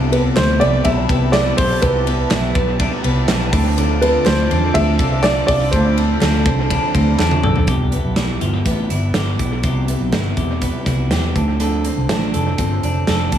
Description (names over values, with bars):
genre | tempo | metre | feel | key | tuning
jangly indie pop | 123 BPM | 4/4 | straight | C major | A4 = 440 Hz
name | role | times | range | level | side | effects
electric guitar through a small old amp | accompaniment | 0.0-13.4 s | C3 to A4 | -25 LUFS | right 3 dB | dub echo
phased analog pad | sustained chords | 0.0-7.7 s | F4 to D6 | -28 LUFS | left 2 dB | phaser, chorus
twelve-string electric guitar | arpeggios | 0.0-13.4 s | C3 to A4 | -24 LUFS | left 3 dB | dub echo
vintage muted fingered electric bass | bass | 0.0-13.4 s | E1 to E2 | -19 LUFS | equal | none
dark upright piano | melody | 0.1-6.7 s | B4 to E5 | -20 LUFS | right 1 dB | dub echo
big rock drum kit | drums | 0.1-13.4 s | hi-hat, kick drum, ride cymbal, snare drum, toms | -20 LUFS | right 1 dB | dub echo
group handclap | percussion | 0.4-7.3 s | none | barely audible | none | none
room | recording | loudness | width
light reverb, small room ambience | echo-heavy mix | -14 LUFS | side -10 dB against mid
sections
0.0-7.7 A section; 7.7-13.4 B section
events
drum fill 7.2-7.7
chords
0.0 Cmaj7; 3.5 Dm7; 7.7 Cmaj7; 11.4 Dm7